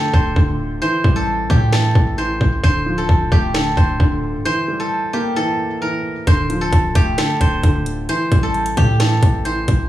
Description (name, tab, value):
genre	hip hop, trap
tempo	132 BPM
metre	4/4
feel	half-time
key	D minor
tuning	A4 = 440 Hz
part	steel-string zither	melody	0.0-9.9 s	G4 to C5	-21 LUFS	equal	tape echo
part	dark concert grand piano	accompaniment	0.0-9.9 s	D3 to Bb3	-22 LUFS	equal	none
part	hard-hitting 808-style bass	bass	0.1-9.9 s	C1 to A2	-20 LUFS	equal	none
part	trap drum kit	drums	0.1-9.8 s	finger snaps, hi-hat, kick drum, snare drum	-16 LUFS	equal	none
room	little or no reverb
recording	dry, gritty hardware recording, small room reverb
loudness	-15 LUFS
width	side -13 dB against mid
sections	0.0-9.9 A section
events	break 0.0-6.3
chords	0.0 Dm7; 0.8 Am7; 2.6 Dm7; 4.5 Edim; 6.3 Dm7; 8.1 Am7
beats	0.36 | 0.82 1.27 1.73 2.18 | 2.63 3.09 3.54 4.00 | 4.45 4.91 5.36 5.82 | 6.27 6.73 7.18 7.63 | 8.09 8.54 9.00 9.45